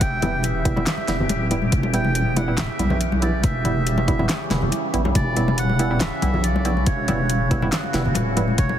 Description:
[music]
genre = deep dubstep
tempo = 140 BPM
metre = 4/4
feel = half-time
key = E dorian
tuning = A4 = 439 Hz
[part]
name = melodica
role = melody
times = 0.0-8.8 s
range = C#5 to G5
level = -29 LUFS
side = right 2 dB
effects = dub echo
[part]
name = overtone-sweeping drone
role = sustained chords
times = 0.0-8.8 s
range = C#3 to G4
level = -27 LUFS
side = right 1 dB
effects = chorus, built-in reverb
[part]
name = deep soft wobble bass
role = bass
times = 0.0-8.8 s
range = D1 to B1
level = -22 LUFS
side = equal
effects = chorus
[part]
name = deep house drum kit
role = drums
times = 0.0-8.7 s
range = handclaps, hi-hat, snare drum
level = -27 LUFS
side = left 1 dB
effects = overdrive
[part]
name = electronic kick drum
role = drums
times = 0.0-8.7 s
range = none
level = -23 LUFS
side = equal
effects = overdrive
[part]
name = filtered dub chord stab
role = stabs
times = 0.2-8.5 s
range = G3 to E4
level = -28 LUFS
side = right 2 dB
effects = chorus, dub echo
[part]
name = congas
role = percussion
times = 0.2-8.8 s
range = none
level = -28 LUFS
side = left 2 dB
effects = none
[sound]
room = light reverb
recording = heavily compressed radio sound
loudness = -18 LUFS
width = side -10 dB against mid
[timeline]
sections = 0.0-8.8 A section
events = none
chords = 0.0 Em

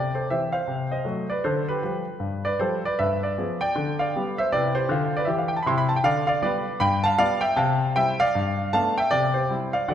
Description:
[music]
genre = jazz, stride piano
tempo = 156 BPM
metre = 4/4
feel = swing 63% on 8ths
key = C major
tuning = A4 = 440 Hz
[part]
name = clear concert grand piano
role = solo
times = 0.0-9.9 s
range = G2 to C6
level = -21 LUFS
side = equal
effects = none
[sound]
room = moderate scoring stage reverb, RT60 1.7 s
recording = recorded in a church or concert hall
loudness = -21 LUFS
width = side -9 dB against mid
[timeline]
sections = 0.0-9.9 A section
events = none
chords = 0.0 C; 0.7 Cdim7; 1.4 G7/D; 3.0 G7b9; 3.7 G7/D; 4.5 C; 6.0 G7/D; 7.6 C; 8.3 G9; 9.1 C

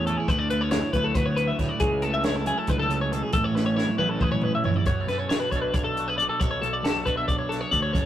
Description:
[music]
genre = math rock and midwest emo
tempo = 274 BPM (eighths)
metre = 7/8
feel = straight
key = unclear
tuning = A4 = 442 Hz
[part]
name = twelve-string electric guitar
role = accompaniment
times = 0.0-8.1 s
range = F#2 to A4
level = -30 LUFS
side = right 4 dB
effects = spring reverb
[part]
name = twelve-string electric guitar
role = arpeggios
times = 0.0-8.1 s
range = G#4 to E5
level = -26 LUFS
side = left 2 dB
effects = spring reverb
[part]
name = fuzz picked electric bass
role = bass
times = 0.0-8.1 s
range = F#1 to F#2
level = -29 LUFS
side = left 1 dB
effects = overdrive
[part]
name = compact cocktail drum kit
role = drums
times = 0.1-8.1 s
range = hi-hat, kick drum, snare drum, toms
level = -27 LUFS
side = equal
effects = none
[sound]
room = moderate studio reverb, RT60 0.7 s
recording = rough rehearsal-room recording, tube saturation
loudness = -22 LUFS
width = side -11 dB against mid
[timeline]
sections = 0.0-4.9 A section; 4.9-8.1 B section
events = drum fill 3.6-4.9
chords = 0.3 D69; 1.8 F#m7/C#; 3.3 Amaj7; 4.9 Bm9

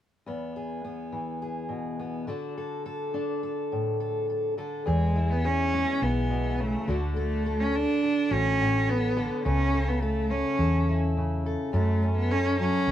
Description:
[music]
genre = folk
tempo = 105 BPM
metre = 4/4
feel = straight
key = E mixolydian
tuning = A4 = 437 Hz
[part]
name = fingerpicked steel-string acoustic guitar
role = accompaniment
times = 0.3-12.9 s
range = E2 to A4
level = -30 LUFS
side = left 2 dB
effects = none
[part]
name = warm cello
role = melody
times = 4.9-12.9 s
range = G#3 to D4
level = -26 LUFS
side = right 1 dB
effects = none
[part]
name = hollow-body short-scale fingered electric bass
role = bass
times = 4.9-12.9 s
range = A1 to F#2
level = -27 LUFS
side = equal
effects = none
[sound]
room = light reverb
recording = band playing live in one room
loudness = -25 LUFS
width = side -11 dB against mid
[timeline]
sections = 0.3-4.9 A section; 4.9-12.9 B section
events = none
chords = 0.3 E; 2.3 D; 4.9 E; 6.9 D; 9.5 A/C#; 11.7 F#m

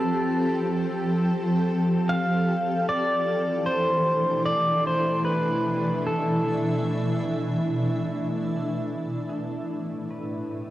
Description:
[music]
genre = ambient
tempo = 76 BPM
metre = 4/4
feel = straight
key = unclear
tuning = A4 = 440 Hz
[part]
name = pedal steel guitar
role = melody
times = 0.0-10.7 s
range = A4 to F5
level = -27 LUFS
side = equal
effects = cassette tape, shimmer reverb, tape echo
[part]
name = granular cloud pad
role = sustained chords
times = 0.0-10.7 s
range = A2 to G5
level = -25 LUFS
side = equal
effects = built-in reverb, cassette tape, shimmer reverb
[part]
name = organ-like drone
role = drone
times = 3.8-10.7 s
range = A3 to E4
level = -33 LUFS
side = equal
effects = ensemble chorus, built-in reverb, cassette tape
[sound]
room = wet studio reverb, RT60 0.6 s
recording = home recording on cassette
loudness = -23 LUFS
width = side -14 dB against mid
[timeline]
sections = 0.0-9.3 A section; 9.3-10.7 B section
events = none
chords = 0.0 Fadd9; 2.9 E7sus4; 9.3 A5

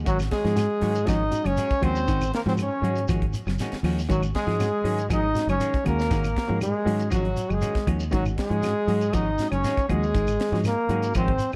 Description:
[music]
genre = afrobeat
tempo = 119 BPM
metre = 4/4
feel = straight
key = Ab mixolydian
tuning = A4 = 440 Hz
[part]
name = reed electric piano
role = accompaniment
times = 0.0-11.3 s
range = Ab3 to Gb4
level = -37 LUFS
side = equal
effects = none
[part]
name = fingered electric bass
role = bass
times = 0.0-11.6 s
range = Gb1 to Ab2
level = -29 LUFS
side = equal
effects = none
[part]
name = breathy trombone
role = melody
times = 0.1-11.6 s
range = Gb3 to Eb4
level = -29 LUFS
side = equal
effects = none
[part]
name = bright trumpet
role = second line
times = 0.1-11.5 s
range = Gb4 to Eb5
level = -36 LUFS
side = equal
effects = none
[part]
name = clean electric guitar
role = arpeggios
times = 0.1-11.3 s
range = Eb3 to Gb3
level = -33 LUFS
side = equal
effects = analog chorus
[part]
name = semi-hollow electric guitar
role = stabs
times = 0.1-11.3 s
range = Eb3 to Gb4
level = -38 LUFS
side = equal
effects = none
[part]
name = tight funk drum kit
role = drums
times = 0.1-11.5 s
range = hi-hat, kick drum, snare drum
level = -32 LUFS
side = equal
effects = none
[part]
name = shekere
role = percussion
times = 0.1-11.6 s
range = none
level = -36 LUFS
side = equal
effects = none
[part]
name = claves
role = percussion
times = 0.2-11.6 s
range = none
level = -44 LUFS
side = equal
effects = none
[sound]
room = light reverb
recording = none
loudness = -24 LUFS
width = mono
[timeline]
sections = 0.0-11.6 A section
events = none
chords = 0.0 Ab7sus4

